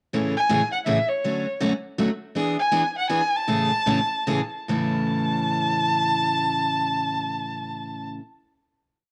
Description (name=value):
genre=jazz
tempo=138-163 BPM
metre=3/4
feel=swing 62% on 8ths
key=A major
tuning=A4 = 440 Hz
part: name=picked steel-string acoustic guitar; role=accompaniment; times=0.1-8.2 s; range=A2 to G#4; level=-27 LUFS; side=equal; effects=cassette tape
part: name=warm violin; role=melody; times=0.4-8.1 s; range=C#5 to A5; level=-26 LUFS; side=equal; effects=cassette tape
room=light reverb, small room ambience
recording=home recording on cassette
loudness=-24 LUFS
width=mono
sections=0.1-4.7 A section; 4.7-7.3 final chord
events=slowing down 2.3-4.7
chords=0.1 Amaj7; 1.2 Dmaj7; 2.3 E7; 3.5 Amaj7; 4.7 A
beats=| 0.12 0.49 0.86 | 1.23 1.60 1.97 | 2.33 2.71 3.08 | 3.46 3.86 4.26 | 4.69 5.12 5.55 | 5.99 6.42 6.85